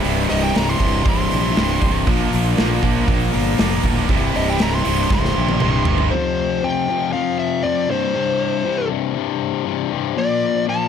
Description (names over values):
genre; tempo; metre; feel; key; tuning
hard rock; 119 BPM; 4/4; straight; C mixolydian; A4 = 444 Hz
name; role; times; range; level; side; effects
distorted electric guitar; riff; 0.0-10.9 s; C2 to Bb3; -22 LUFS; left 11 dB; distortion
tight distorted guitar; riff; 0.0-6.1 s; C2 to Bb3; -24 LUFS; right 12 dB; distortion
tight distorted guitar; riff; 0.0-6.1 s; C2 to Bb4; -25 LUFS; right 2 dB; distortion
big rock drum kit; drums; 0.0-6.1 s; hi-hat, kick drum, snare drum, toms; -22 LUFS; right 1 dB; none
fuzz fingered electric bass; bass; 0.1-6.1 s; C1 to Bb1; -22 LUFS; right 1 dB; overdrive
smooth overdriven lead guitar; melody; 0.3-10.9 s; C5 to C6; -23 LUFS; equal; analog delay
room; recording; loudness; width
light reverb; none; -16 LUFS; side -8 dB against mid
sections
0.0-6.1 A section; 6.1-10.9 B section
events
lead electric guitar solo 0.0-6.1; drum fill 5.1-6.1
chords
0.0 C; 2.1 Bb; 4.1 C; 6.1 F5; 7.9 C5; 10.2 Bb